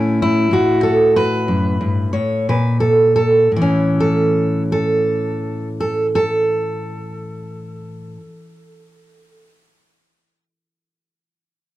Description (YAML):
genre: acoustic country blues, solo or duo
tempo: 56-64 BPM (dotted quarters)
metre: 12/8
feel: straight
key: A major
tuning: A4 = 441 Hz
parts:
  - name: fingerpicked steel-string acoustic guitar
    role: solo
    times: 0.0-9.3 s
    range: F#2 to C#5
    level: -15 LUFS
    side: equal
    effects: none
room: light reverb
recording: close, detailed microphones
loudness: -14 LUFS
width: side -15 dB against mid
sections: 0.0-3.5 A section; 3.5-7.8 B section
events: slowing down 0.0-3.5; stop 0.0-2.5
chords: 0.0 A; 2.5 N.C.; 3.5 A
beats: 0.51 1.47 2.47 | 3.50 4.57 5.63 6.69